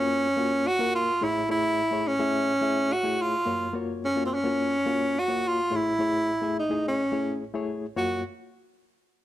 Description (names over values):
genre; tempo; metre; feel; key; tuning
soul; 107 BPM; 4/4; straight; unclear; A4 = 439 Hz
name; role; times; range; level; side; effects
breathy tenor saxophone; melody; 0.0-8.2 s; B#3 to F#4; -24 LUFS; right 1 dB; plate reverb
barky reed electric piano; accompaniment; 0.0-8.2 s; A1 to E5; -31 LUFS; left 4 dB; overdrive, fast tremolo, plate reverb
room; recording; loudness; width
moderate studio reverb, RT60 0.6 s; dark, warm production; -24 LUFS; side -13 dB against mid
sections
0.0-8.0 A section; 8.0-9.2 B section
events
none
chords
0.0 F#maj7; 1.2 Amaj7; 3.5 F#maj7; 5.7 Amaj7; 8.0 F#maj7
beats
0.09 0.65 | 1.21 1.78 2.34 2.90 | 3.46 4.03 4.59 5.15 | 5.71 6.27 6.83 7.40 | 7.96